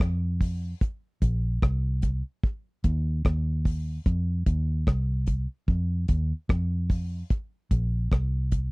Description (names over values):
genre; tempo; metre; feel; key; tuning
roots reggae; 74 BPM; 4/4; swing 61% on 16ths; unclear; A4 = 440 Hz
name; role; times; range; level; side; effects
vintage muted fingered electric bass; bass; 0.0-8.7 s; Bb1 to F2; -26 LUFS; equal; none
deep reggae drum kit; drums; 0.0-8.7 s; hi-hat, kick drum, rim click; -25 LUFS; equal; none
room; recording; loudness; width
little or no reverb; dry, close 1970s-style studio recording; -25 LUFS; side -29 dB against mid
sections
0.0-8.7 A section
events
none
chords
none